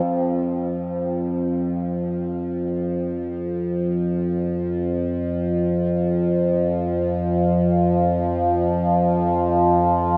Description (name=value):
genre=ambient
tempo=free time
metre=none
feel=none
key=unclear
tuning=A4 = 440 Hz
part: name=overtone-sweeping drone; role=drone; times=0.0-10.2 s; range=F2 to F3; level=-22 LUFS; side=equal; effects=chorus, built-in reverb
room=wet huge ambient reverb, RT60 8.2 s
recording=none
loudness=-22 LUFS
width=mono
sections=0.1-10.2 A section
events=fade-in on synth drone 0.1-10.2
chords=none